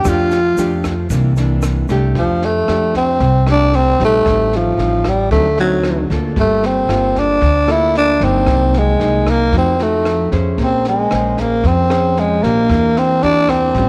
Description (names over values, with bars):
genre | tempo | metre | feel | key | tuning
bossa nova | 114 BPM | 4/4 | straight | F major | A4 = 437 Hz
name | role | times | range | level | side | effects
growling tenor saxophone | melody | 0.0-13.9 s | F3 to G4 | -17 LUFS | equal | tape echo
nylon-string guitar | accompaniment | 0.0-13.9 s | A2 to C5 | -22 LUFS | equal | none
upright bass | bass | 0.0-13.9 s | G1 to F2 | -21 LUFS | equal | transformer saturation
tube shaker | percussion | 0.0-2.2 s | none | -39 LUFS | equal | none
compact cocktail drum kit | drums | 0.1-13.9 s | kick drum, rim click, snare drum | -28 LUFS | equal | none
room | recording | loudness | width
light reverb, small room ambience | none | -15 LUFS | mono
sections
0.0-2.2 A section; 2.2-13.9 B section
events
tenor saxophone solo 0.0-2.2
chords
0.0 F69; 1.1 C9; 2.2 F69; 4.3 Am7b5; 5.3 D7b9; 6.4 Gm9; 8.5 Cm7b5; 9.5 F7b9; 10.6 Bbm9; 12.7 Em7b5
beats
| 0.05 0.58 1.10 1.63 | 2.15 2.68 3.21 3.73 | 4.26 4.79 5.31 5.84 | 6.36 6.89 7.42 7.94 | 8.47 9.00 9.52 10.05 | 10.58 11.11 11.63 12.16 | 12.69 13.22 13.74